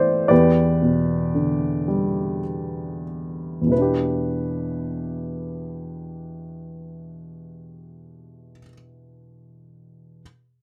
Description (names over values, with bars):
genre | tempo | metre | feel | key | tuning
classical, lyrical solo piano | 30-41 BPM (dotted quarters) | 6/8 | rubato | E minor | A4 = 440 Hz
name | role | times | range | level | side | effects
warm upright piano | solo | 0.0-10.2 s | E2 to D5 | -23 LUFS | equal | none
room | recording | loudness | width
little or no reverb | close, detailed microphones | -22 LUFS | mono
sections
0.0-3.7 A section; 3.7-7.7 B section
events
slowing down 0.0-3.7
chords
0.3 Em7